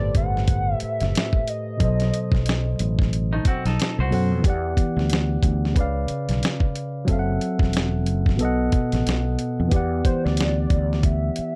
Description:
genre	R&B, neo-soul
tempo	91 BPM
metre	4/4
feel	swing 58% on 16ths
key	E minor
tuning	A4 = 440 Hz
part	hollow square lead	melody	0.0-2.8, 10.1-11.6 s	C5 to F#5	-31 LUFS	equal	chorus, plate reverb
part	tine electric piano	accompaniment	0.0-11.6 s	A2 to F#5	-28 LUFS	equal	plate reverb
part	fretless electric bass	bass	0.0-11.4 s	E1 to F#2	-26 LUFS	equal	none
part	dusty soul sampler-style drum kit	drums	0.1-11.5 s	hi-hat, kick drum, snare drum	-25 LUFS	equal	none
part	semi-hollow electric guitar	second line	3.3-4.4 s	A3 to C5	-31 LUFS	equal	none
room	light reverb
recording	dark, warm production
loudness	-22 LUFS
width	mono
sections	0.0-11.6 A section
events	none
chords	0.0 Am9; 1.8 B7b9; 4.4 Em9; 5.8 C#7b9; 7.1 F#m7b5; 8.4 B7; 9.7 Em9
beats	0.48 1.14 | 1.80 2.46 3.12 3.78 | 4.44 5.10 5.76 6.42 | 7.08 7.74 8.40 9.05 | 9.71 10.37 11.03

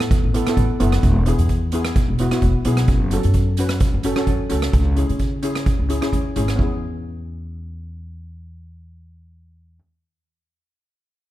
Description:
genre	calypso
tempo	130 BPM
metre	4/4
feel	swing 54% on 16ths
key	E major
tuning	A4 = 440 Hz
part	steel pan	accompaniment	0.0-9.8 s	B3 to B4	-23 LUFS	equal	none
part	upright bass	bass	0.0-9.8 s	E1 to C#3	-21 LUFS	equal	none
part	street-band drum kit	drums	0.0-6.7 s	hi-hat, kick drum, rim click	-21 LUFS	right 1 dB	none
room	little or no reverb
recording	dark, warm production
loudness	-17 LUFS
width	side -14 dB against mid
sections	0.0-6.6 A section; 6.6-10.3 B section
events	none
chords	0.0 Asus2; 1.0 E; 2.9 F#m; 4.7 C#m; 6.6 E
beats	0.11 0.57 | 1.03 1.50 1.96 2.42 | 2.88 3.35 3.81 4.28 | 4.74 5.20 5.67 6.13 | 6.59 7.06 7.52 7.98 | 8.45 8.91 9.37

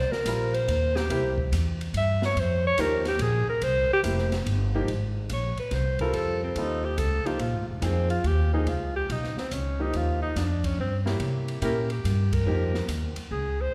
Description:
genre	jazz, small-group swing and bop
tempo	142 BPM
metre	3/4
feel	swing 67% on 8ths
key	F minor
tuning	A4 = 440 Hz
part	breathy alto saxophone	melody	0.0-13.7 s	Ab3 to E5	-30 LUFS	equal	none
part	upright bass	bass	0.0-13.7 s	F1 to C3	-29 LUFS	equal	none
part	open jazz drum kit	drums	0.1-13.4 s	hi-hat, kick drum, ride cymbal, snare drum	-39 LUFS	equal	none
part	clear baby grand piano	accompaniment	0.3-12.7 s	F3 to Db5	-34 LUFS	equal	none
room	wet scoring stage reverb, RT60 1.7 s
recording	recorded in a church or concert hall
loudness	-26 LUFS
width	mono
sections	0.0-4.9 A section; 4.9-13.7 B section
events	alto saxophone solo 0.0-4.9; band accent 12.3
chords	0.0 Cm7; 1.1 C7; 2.4 F9sus4; 3.6 C7; 4.9 Fm (rootless); 6.1 F7b13; 7.4 Bb5; 8.7 Db9; 9.9 Eb; 11.2 C7b9; 12.5 Fm9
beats	0.26 0.68 | 1.09 1.51 1.94 | 2.35 2.77 3.19 | 3.61 4.04 4.46 | 4.88 5.30 5.72 | 6.14 6.56 6.98 | 7.40 7.83 8.25 | 8.67 9.09 9.51 | 9.94 10.36 10.78 | 11.20 11.62 12.04 | 12.47 12.89 13.31 | 13.73

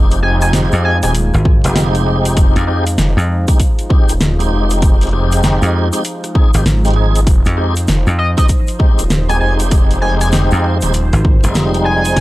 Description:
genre	glitch hop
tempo	98 BPM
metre	4/4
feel	swing 62% on 16ths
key	F minor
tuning	A4 = 440 Hz
part	warm analog pad	sustained chords	0.0-12.2 s	F3 to C5	-24 LUFS	equal	chorus, sidechain pumping
part	tonewheel organ	stabs	0.0-12.2 s	G3 to Ab4	-20 LUFS	equal	chorus vibrato, slow rotary speaker, sidechain pumping, analog delay
part	phased detuned saw bass	bass	0.0-12.2 s	Eb1 to Ab1	-15 LUFS	equal	phaser, overdrive
part	pop drum kit	drums	0.1-12.2 s	hi-hat, rim click, snare drum	-19 LUFS	equal	studio reverb
part	tube shaker	percussion	0.1-12.2 s	none	-29 LUFS	left 2 dB	none
part	sync lead	melody	0.2-1.1, 8.2-12.2 s	Eb5 to Ab5	-20 LUFS	equal	chorus, analog delay
part	dry thumbed slap bass	bass	0.7-12.1 s	F1 to F2	-14 LUFS	equal	none
part	electronic kick drum	drums	1.5-12.2 s	none	-11 LUFS	equal	studio reverb
room	little or no reverb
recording	dry, gritty hardware recording, vinyl crackle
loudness	-11 LUFS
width	side -17 dB against mid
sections	0.0-12.2 A section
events	none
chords	0.0 Fm9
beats	0.53 1.15 1.76 | 2.37 2.98 3.59 4.21 | 4.82 5.43 6.04 6.66 | 7.27 7.88 8.49 9.10 | 9.72 10.33 10.94 11.55 | 12.16

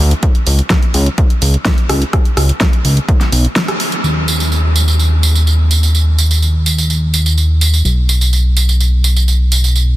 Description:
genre	progressive house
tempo	126 BPM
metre	4/4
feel	straight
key	unclear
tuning	A4 = 441 Hz
part	fat analog bass	bass	0.0-10.0 s	B1 to Eb2	-11 LUFS	equal	sidechain pumping
part	pop drum kit	drums	0.1-9.9 s	hi-hat, rim click, snare drum, tambourine	-17 LUFS	right 1 dB	overdrive
part	electronic kick drum	drums	0.2-3.2 s	none	-12 LUFS	equal	none
room	light reverb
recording	dense, heavily limited modern master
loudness	-10 LUFS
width	side -16 dB against mid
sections	0.0-4.0 A section; 4.0-10.0 B section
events	break 3.6-4.0; band accent 3.6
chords	none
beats	| 0.23 0.70 1.18 1.66 | 2.13 2.61 3.08 3.56 | 4.04 4.51 4.99 5.47 | 5.94 6.42 6.89 7.37 | 7.85 8.32 8.80 9.28 | 9.75

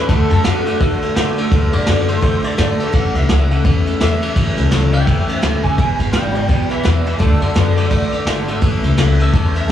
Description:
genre	rockabilly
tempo	169 BPM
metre	4/4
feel	swing 60% on 8ths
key	A major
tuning	A4 = 441 Hz
part	electric guitar through a small old amp	melody	0.0-9.7 s	F#4 to G#5	-23 LUFS	equal	ensemble chorus, plate reverb, slapback echo, tape echo
part	picked steel-string acoustic guitar	accompaniment	0.0-9.7 s	E2 to F#4	-23 LUFS	left 6 dB	plate reverb, slapback echo
part	electric guitar at the edge of break-up	riff	0.0-9.7 s	E2 to B3	-23 LUFS	right 5 dB	ensemble chorus, slapback echo
part	upright bass	bass	0.1-9.7 s	E1 to A2	-17 LUFS	left 1 dB	none
part	vintage brush drum kit	drums	0.1-9.7 s	kick drum, ride cymbal, snare drum	-18 LUFS	equal	none
room	light reverb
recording	live gig heard through the venue's PA, club reverb, small room ambience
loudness	-13 LUFS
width	side -10 dB against mid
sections	0.0-9.7 A section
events	clean electric guitar solo 0.0-9.7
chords	0.1 D; 2.9 A; 5.8 E; 7.2 D; 8.6 A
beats	| 0.09 0.45 0.80 1.16 | 1.51 1.87 2.23 2.58 | 2.94 3.29 3.65 4.00 | 4.36 4.71 5.07 5.43 | 5.78 6.14 6.49 6.85 | 7.20 7.56 7.91 8.27 | 8.62 8.98 9.33 9.69

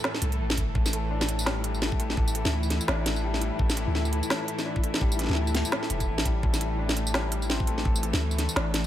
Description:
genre	half-time drum and bass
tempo	169 BPM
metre	4/4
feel	swing 58% on 16ths, half-time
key	unclear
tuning	A4 = 440 Hz
part	bowed-like drone	sustained chords	0.0-8.9 s	A2 to A4	-34 LUFS	left 1 dB	built-in reverb, vintage 12-bit sampler grit, sidechain pumping
part	organic electronic drum kit	drums	0.0-8.9 s	hi-hat, snare drum, tambourine	-29 LUFS	equal	overdrive
part	flickering grainy texture	texture	0.0-8.9 s	E4 to A4	-39 LUFS	left 1 dB	built-in reverb
part	long sustained 808-style bass	bass	0.2-8.9 s	E1 to D2	-29 LUFS	equal	none
part	electronic kick drum	drums	0.6-7.9 s	none	-26 LUFS	equal	none
part	felt-muted upright piano	arpeggios	0.8-8.9 s	G3 to A4	-34 LUFS	left 4 dB	digital delay
room	light reverb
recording	none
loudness	-24 LUFS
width	side -12 dB against mid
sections	0.0-8.9 A section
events	none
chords	0.0 A5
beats	0.04 0.40 | 0.75 1.11 1.46 1.82 | 2.17 2.53 2.88 3.24 | 3.59 3.95 4.30 4.66 | 5.01 5.37 5.72 6.08 | 6.43 6.79 7.14 7.50 | 7.85 8.21 8.56

